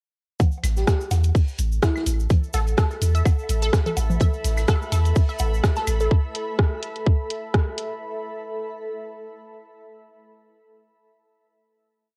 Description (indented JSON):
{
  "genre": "minimal techno",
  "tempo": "126 BPM",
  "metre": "4/4",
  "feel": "swing 55% on 16ths",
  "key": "unclear",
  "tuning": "A4 = 438 Hz",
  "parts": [
    { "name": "electronic kick drum", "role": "drums", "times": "0.4-7.6 s", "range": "none", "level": "-21 LUFS", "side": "equal", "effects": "cassette tape" },
    { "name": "swinging big-band drum kit", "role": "drums", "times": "0.4-6.0 s", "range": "hi-hat, snare drum", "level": "-43 LUFS", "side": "equal", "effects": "none" },
    { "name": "cabasa", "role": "percussion", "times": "0.4-6.1 s", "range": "none", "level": "-41 LUFS", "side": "equal", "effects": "none" },
    { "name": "congas and woodblock", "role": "percussion", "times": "0.4-6.0 s", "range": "none", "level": "-34 LUFS", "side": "equal", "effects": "cassette tape, analog delay" },
    { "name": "granular cloud pad", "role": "texture", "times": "2.7-8.0 s", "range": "A4 to B5", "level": "-35 LUFS", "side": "equal", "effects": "built-in reverb, sidechain pumping" },
    { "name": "punchy sub bass", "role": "bass", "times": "0.6-6.1 s", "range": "A1 to E2", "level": "-23 LUFS", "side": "equal", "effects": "sidechain pumping" },
    { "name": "techno drum kit", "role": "drums", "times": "0.6-7.9 s", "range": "hi-hat, rim click", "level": "-30 LUFS", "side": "equal", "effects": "cassette tape" },
    { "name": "airy dreamy lead", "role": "melody", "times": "0.8-2.0 s", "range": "E4 to G4", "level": "-32 LUFS", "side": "equal", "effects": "chorus, cassette tape, analog delay" },
    { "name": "resonant blip pluck", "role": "riff", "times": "2.5-6.0 s", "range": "A4 to E5", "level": "-32 LUFS", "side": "equal", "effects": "phaser, sidechain pumping, tape echo" }
  ],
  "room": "little or no reverb",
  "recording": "home recording on cassette",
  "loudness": "-22 LUFS",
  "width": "mono",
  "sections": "0.4-8.0 groove",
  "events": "fade-in on ambient pad 0.4-8.0",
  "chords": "0.4 A5"
}